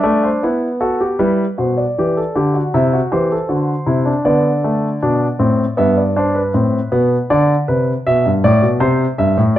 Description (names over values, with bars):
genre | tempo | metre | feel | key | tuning
classical, baroque-style 3-part fugue for grand piano | 79 BPM | 4/4 | straight | unclear | A4 = 439 Hz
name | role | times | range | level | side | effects
warm concert grand piano | solo | 0.0-9.6 s | G2 to E5 | -13 LUFS | equal | none
room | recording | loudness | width
light reverb | close, detailed microphones | -13 LUFS | side -13 dB against mid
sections
0.0-1.2 A section; 1.2-9.6 B section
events
none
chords
0.0 G; 1.2 Em; 2.7 Am/C; 4.3 D5; 5.8 G